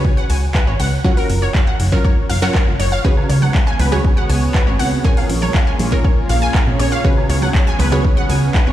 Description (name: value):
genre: progressive house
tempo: 120 BPM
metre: 4/4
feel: straight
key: Db mixolydian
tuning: A4 = 440 Hz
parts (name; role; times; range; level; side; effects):
- wide unison pluck; arpeggios; 0.0-8.7 s; Bb4 to Ab5; -22 LUFS; equal; wide subtle chorus, sidechain pumping, dub echo
- wide unison pluck; stabs; 0.0-8.7 s; Bb2 to Db5; -23 LUFS; right 1 dB; sidechain pumping, dub echo
- electronic kick drum; drums; 0.0-8.6 s; none; -16 LUFS; equal; overdrive, small room ambience
- plucky analog bass; bass; 0.3-8.7 s; Gb1 to Bb2; -17 LUFS; equal; sidechain pumping
- deep house drum kit; drums; 0.3-8.6 s; handclaps, hi-hat; -26 LUFS; equal; overdrive, small room ambience
- lush unison pad; sustained chords; 3.0-8.7 s; Gb3 to Db5; -24 LUFS; equal; chorus, phaser, sidechain pumping
- woodblock and congas; percussion; 3.2-8.7 s; none; -27 LUFS; right 3 dB; sidechain pumping on perc
room: light reverb, digital ambience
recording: played on a big sound system in a bare room, large studio reverb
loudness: -13 LUFS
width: side -13 dB against mid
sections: 0.0-8.7 A section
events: none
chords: 0.0 Db7sus4; 1.0 Gbmaj7; 3.0 Db7sus4; 5.0 Bbm7; 7.0 Db7sus4